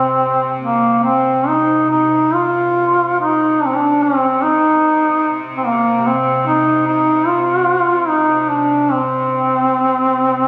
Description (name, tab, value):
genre	caucasian folk, Caucasian lament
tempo	73 BPM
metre	3/4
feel	uneven beats, rubato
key	C minor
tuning	A4 = 439 Hz
part	warm duduk	melody	0.0-10.5 s	Bb3 to F4	-16 LUFS	equal	none
part	bright chamber string section	drone	0.0-10.5 s	C3	-28 LUFS	equal	none
room	light reverb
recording	recorded on a phone in the room, studio reverb, compression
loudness	-15 LUFS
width	mono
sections	0.0-1.9 A section; 1.9-10.5 B section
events	none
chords	none